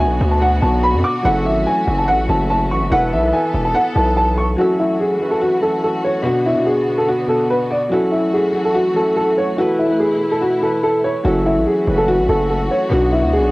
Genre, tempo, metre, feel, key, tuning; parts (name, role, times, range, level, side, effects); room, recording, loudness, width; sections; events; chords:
hip hop; 144 BPM; 4/4; half-time; F# minor; A4 = 438 Hz
dark upright piano; melody; 0.0-13.5 s; E4 to D6; -17 LUFS; equal; low-pass filter, cassette tape
dark grand piano; accompaniment; 0.0-13.5 s; B2 to B4; -21 LUFS; equal; low-pass filter, cassette tape
dark chamber string section; sustained chords; 0.0-13.5 s; B2 to A4; -25 LUFS; left 1 dB; cassette tape
distorted 808-style bass; bass; 0.0-4.6, 11.2-13.5 s; E1 to F#2; -18 LUFS; equal; distortion
light reverb, small room ambience; home recording on cassette; -14 LUFS; side -21 dB against mid
0.0-4.6 A section; 4.6-11.2 B section; 11.2-13.5 C section
0.0 Bm; 1.2 F#m7; 2.9 Esus4; 4.6 F#m7; 6.2 Bm; 7.9 F#m7; 9.6 Esus4; 11.2 F#m7; 12.9 Bm